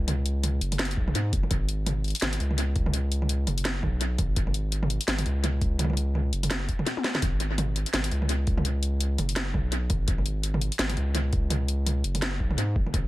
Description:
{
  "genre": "half-time drum and bass",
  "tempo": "168 BPM",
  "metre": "4/4",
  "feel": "swing 59% on 16ths, half-time",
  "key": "unclear",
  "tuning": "A4 = 437 Hz",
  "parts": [
    { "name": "saturated sub bass", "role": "bass", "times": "0.0-13.1 s", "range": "F#1 to G#2", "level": "-27 LUFS", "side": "equal", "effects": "none" },
    { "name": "drum and bass drum kit", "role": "drums", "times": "0.1-13.0 s", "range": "hi-hat, snare drum, toms", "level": "-29 LUFS", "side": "equal", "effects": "analog delay" },
    { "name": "electronic kick drum", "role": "drums", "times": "1.0-13.0 s", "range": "none", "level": "-27 LUFS", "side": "equal", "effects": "none" }
  ],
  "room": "little or no reverb",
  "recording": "echo-heavy mix",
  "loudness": "-24 LUFS",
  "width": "side -17 dB against mid",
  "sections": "0.0-13.1 A section",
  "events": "drum fill 6.9-7.2",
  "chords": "none",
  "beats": "| 0.08 0.44 0.79 1.15 | 1.51 1.86 2.22 2.58 | 2.94 3.29 3.65 4.01 | 4.37 4.72 5.08 5.44 | 5.79 6.15 6.51 6.87 | 7.22 7.58 7.94 8.29 | 8.65 9.01 9.37 9.72 | 10.08 10.44 10.79 11.15 | 11.51 11.87 12.22 12.58 | 12.94"
}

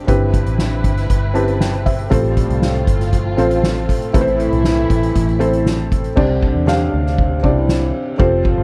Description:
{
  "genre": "piano-driven pop",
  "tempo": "118 BPM",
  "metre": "4/4",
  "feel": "straight",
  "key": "C major",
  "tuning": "A4 = 441 Hz",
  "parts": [
    { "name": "felt-muted upright piano", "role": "accompaniment", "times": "0.0-8.6 s", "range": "G2 to A5", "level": "-21 LUFS", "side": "equal", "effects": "none" },
    { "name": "dark studio string section", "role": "sustained chords", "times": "0.0-6.1 s", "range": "A3 to B4", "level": "-31 LUFS", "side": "equal", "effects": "none" },
    { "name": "vintage muted fingered electric bass", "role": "bass", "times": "0.1-8.6 s", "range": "F1 to E2", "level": "-22 LUFS", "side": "equal", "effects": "none" },
    { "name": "soft-mallet drum kit", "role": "drums", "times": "0.1-8.6 s", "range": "crash cymbal, hi-hat, kick drum, ride cymbal, snare drum", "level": "-21 LUFS", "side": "equal", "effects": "none" },
    { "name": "mellow French horn section", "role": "second line", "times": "2.1-8.6 s", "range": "D3 to G4", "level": "-25 LUFS", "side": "equal", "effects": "none" }
  ],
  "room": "little or no reverb",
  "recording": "none",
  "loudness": "-16 LUFS",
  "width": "mono",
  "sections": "0.0-6.2 A section; 6.2-8.6 B section",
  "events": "felt piano fill 1.1-2.1",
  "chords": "0.1 Cmaj7/G; 2.1 F; 4.1 Am; 6.2 Csus2",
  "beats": "| 0.08 0.59 1.10 1.60 | 2.11 2.62 3.13 3.63 | 4.14 4.65 5.16 5.66 | 6.17 6.68 7.18 7.69 | 8.20"
}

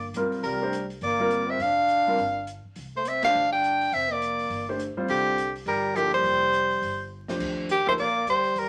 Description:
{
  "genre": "modal jazz",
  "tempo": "207 BPM",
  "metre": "4/4",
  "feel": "swing 61% on 8ths",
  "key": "C mixolydian",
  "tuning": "A4 = 440 Hz",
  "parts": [
    { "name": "breathy soprano saxophone", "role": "melody", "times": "0.0-8.7 s", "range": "G4 to G5", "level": "-26 LUFS", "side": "equal", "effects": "none" },
    { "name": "clear trombone", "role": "second line", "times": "0.0-8.7 s", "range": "D3 to D4", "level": "-35 LUFS", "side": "equal", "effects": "none" },
    { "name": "upright bass", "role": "bass", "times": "0.0-8.7 s", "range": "F1 to E2", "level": "-44 LUFS", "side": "equal", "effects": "none" },
    { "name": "open jazz drum kit", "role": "drums", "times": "0.1-8.6 s", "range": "crash cymbal, hi-hat, kick drum, ride cymbal, snare drum", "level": "-46 LUFS", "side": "equal", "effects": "none" },
    { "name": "warm concert grand piano", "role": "accompaniment", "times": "0.2-8.0 s", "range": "F2 to C5", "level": "-32 LUFS", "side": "equal", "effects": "none" }
  ],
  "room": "wet studio reverb, RT60 0.6 s",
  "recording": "vinyl crackle",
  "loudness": "-25 LUFS",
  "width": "mono",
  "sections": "0.0-7.4 A section; 7.4-8.7 B section",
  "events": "band accent 3.2; drum fill 7.1",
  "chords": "0.0 C9sus4; 7.4 Ebmaj9",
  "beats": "0.15 | 0.44 0.73 1.02 1.31 | 1.60 1.89 2.18 2.47 | 2.76 3.05 3.34 3.63 | 3.92 4.21 4.50 4.79 | 5.08 5.37 5.66 5.95 | 6.24 6.53 6.82 7.11 | 7.40 7.69 7.98 8.27 | 8.56"
}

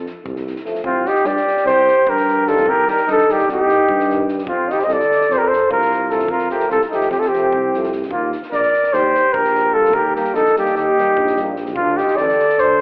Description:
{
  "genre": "balkan folk, Balkan brass band",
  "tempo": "297 BPM (eighths)",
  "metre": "9/8",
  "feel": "straight",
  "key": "F mixolydian",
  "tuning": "A4 = 440 Hz",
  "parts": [
    { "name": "mellow tuba", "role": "bass", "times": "0.0-12.8 s", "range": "A1 to G2", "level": "-24 LUFS", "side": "equal", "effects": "none" },
    { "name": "compact cocktail drum kit", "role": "percussion", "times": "0.1-12.6 s", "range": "kick drum, snare drum", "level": "-35 LUFS", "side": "equal", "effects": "slapback echo" },
    { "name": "mellow euphonium", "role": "accompaniment", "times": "0.6-11.5 s", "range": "Eb3 to G3", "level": "-28 LUFS", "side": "right 1 dB", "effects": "slapback echo" },
    { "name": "warm euphonium", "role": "accompaniment", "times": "0.6-11.5 s", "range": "G3 to Bb3", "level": "-29 LUFS", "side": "left 1 dB", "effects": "slapback echo" },
    { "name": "mellow flugelhorn", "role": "second line", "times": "0.8-12.8 s", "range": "Bb3 to C5", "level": "-22 LUFS", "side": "equal", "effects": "slapback echo" },
    { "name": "mellow flugelhorn", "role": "melody", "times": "0.9-12.8 s", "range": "F4 to Eb5", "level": "-15 LUFS", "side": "equal", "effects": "slapback echo, tape echo" }
  ],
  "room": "light reverb, studio reverb",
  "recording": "live gig heard through the venue's PA, club reverb, telephone sound",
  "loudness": "-14 LUFS",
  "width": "side -27 dB against mid",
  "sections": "0.8-12.8 A section",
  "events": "none",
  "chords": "0.0 F; 0.8 Cm; 4.5 F; 8.1 Eb; 11.8 Dm",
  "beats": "0.03 0.23 0.44 0.64 | 0.84 1.04 1.25 1.45 1.65 1.85 2.05 2.25 2.45 | 2.66 2.86 3.06 3.26 3.46 3.66 3.87 4.07 4.27 | 4.47 4.67 4.87 5.07 5.28 5.48 5.68 5.88 6.08 | 6.29 6.49 6.69 6.89 7.09 7.30 7.50 7.70 7.91 | 8.11 8.31 8.52 8.72 8.92 9.12 9.33 9.53 9.73 | 9.94 10.14 10.34 10.55 10.75 10.95 11.16 11.36 11.56 | 11.77 11.97 12.18 12.38 12.58 12.79"
}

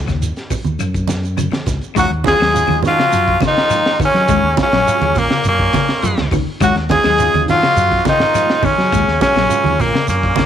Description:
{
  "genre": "afrobeat",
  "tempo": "103 BPM",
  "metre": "4/4",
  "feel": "straight",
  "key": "Eb minor",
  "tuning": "A4 = 440 Hz",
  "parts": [
    { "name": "fingered electric bass", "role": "bass", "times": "0.0-10.3 s", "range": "Bb1 to Gb3", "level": "-20 LUFS", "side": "equal", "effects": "none" },
    { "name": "semi-hollow electric guitar", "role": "arpeggios", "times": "0.1-10.5 s", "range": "Db3 to Ab3", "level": "-23 LUFS", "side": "left 11 dB", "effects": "none" },
    { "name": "crunchy breakbeat drum kit", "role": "drums", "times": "0.1-10.5 s", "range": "hi-hat, kick drum, snare drum", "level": "-21 LUFS", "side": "equal", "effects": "none" },
    { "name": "shekere", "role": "percussion", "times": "0.1-10.5 s", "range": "none", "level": "-27 LUFS", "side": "right 4 dB", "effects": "none" },
    { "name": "congas", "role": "percussion", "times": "0.2-10.5 s", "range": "none", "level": "-22 LUFS", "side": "right 7 dB", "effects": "none" },
    { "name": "raspy tenor saxophone", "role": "melody", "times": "2.0-10.5 s", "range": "Bb3 to Ab4", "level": "-15 LUFS", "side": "left 1 dB", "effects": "none" },
    { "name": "brilliant trombone section", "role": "second line", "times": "2.0-10.5 s", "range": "Bb2 to Ab3", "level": "-25 LUFS", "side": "left 12 dB", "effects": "none" },
    { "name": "mellow trumpet", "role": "second line", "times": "2.0-10.5 s", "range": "Bb3 to Ab4", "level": "-23 LUFS", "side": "right 11 dB", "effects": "none" },
    { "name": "overdriven reed electric piano", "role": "accompaniment", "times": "2.0-9.9 s", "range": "Gb3 to Gb4", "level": "-27 LUFS", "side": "right 12 dB", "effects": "fast tremolo" }
  ],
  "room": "light reverb, small room ambience",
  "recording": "1960s-style stereo with parts hard left and right",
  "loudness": "-12 LUFS",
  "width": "side -9 dB against mid",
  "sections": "0.0-2.0 A section; 2.0-10.5 B section",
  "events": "none",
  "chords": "0.0 Eb7(no3); 0.8 Gb5; 2.0 Ebm11; 3.1 Gbmaj7; 4.3 Ebm11; 5.4 Gbmaj7; 6.6 Ebm11; 7.8 Gbmaj7; 8.9 Ebm11",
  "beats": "0.21 0.79 1.38 | 1.96 2.54 3.12 3.70 | 4.28 4.86 5.45 6.02 | 6.60 7.18 7.76 8.34 | 8.92 9.50 10.08"
}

